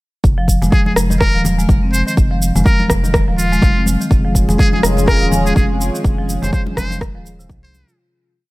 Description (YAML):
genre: afro house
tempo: 124 BPM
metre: 4/4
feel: swing 58% on 16ths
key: unclear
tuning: A4 = 441 Hz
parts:
  - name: round analog bass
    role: bass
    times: 0.2-7.8 s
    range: Eb1 to C2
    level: -19 LUFS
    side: equal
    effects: sidechain pumping
  - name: electronic cabasa and rim click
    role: drums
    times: 0.2-8.0 s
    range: none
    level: -21 LUFS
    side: equal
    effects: studio reverb
  - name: electronic kick drum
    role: drums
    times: 0.2-7.6 s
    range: none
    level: -14 LUFS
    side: equal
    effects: studio reverb
  - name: marimba with soft mallets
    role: arpeggios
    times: 0.4-8.0 s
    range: C3 to F4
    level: -20 LUFS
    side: equal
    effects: sidechain pumping, tape echo
  - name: congas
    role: percussion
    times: 0.6-7.9 s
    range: none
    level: -23 LUFS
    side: left 1 dB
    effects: none
  - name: trumpet with metal mute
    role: melody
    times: 0.7-8.0 s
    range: F4 to C5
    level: -22 LUFS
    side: equal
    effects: tape echo
  - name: warm analog pad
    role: sustained chords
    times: 4.1-7.9 s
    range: Ab3 to Ab4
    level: -22 LUFS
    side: equal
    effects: chorus, sidechain pumping
room: small room ambience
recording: none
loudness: -12 LUFS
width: side -20 dB against mid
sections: 0.2-8.0 groove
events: fade-out 5.4-8.0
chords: 0.2 N.C.; 4.1 Db